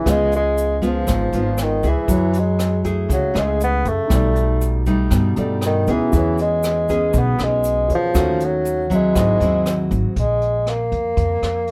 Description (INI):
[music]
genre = bossa nova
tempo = 119 BPM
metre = 4/4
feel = straight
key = C# minor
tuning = A4 = 440 Hz
[part]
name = mellow bassoon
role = melody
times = 0.0-11.7 s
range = D#3 to B3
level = -23 LUFS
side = equal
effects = none
[part]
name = nylon-string guitar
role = accompaniment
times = 0.0-10.1 s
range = G#2 to G#4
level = -24 LUFS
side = equal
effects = none
[part]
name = warm grand piano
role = accompaniment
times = 0.0-10.2 s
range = D#4 to D#5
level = -33 LUFS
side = equal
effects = none
[part]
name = upright bass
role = bass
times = 0.1-11.7 s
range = G#1 to G2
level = -24 LUFS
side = equal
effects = none
[part]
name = jazz brush drum kit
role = drums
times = 0.1-11.7 s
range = hi-hat, kick drum, rim click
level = -28 LUFS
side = equal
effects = none
[part]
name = egg shaker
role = percussion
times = 0.1-10.2 s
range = none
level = -39 LUFS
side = equal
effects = none
[sound]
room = little or no reverb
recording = none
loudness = -19 LUFS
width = mono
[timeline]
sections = 0.0-10.2 A section; 10.2-11.7 B section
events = none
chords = 0.1 C#7; 2.1 F#m9; 4.1 B7alt; 6.1 E6; 8.1 D#m7b5; 9.2 G#7b13; 10.2 Bb5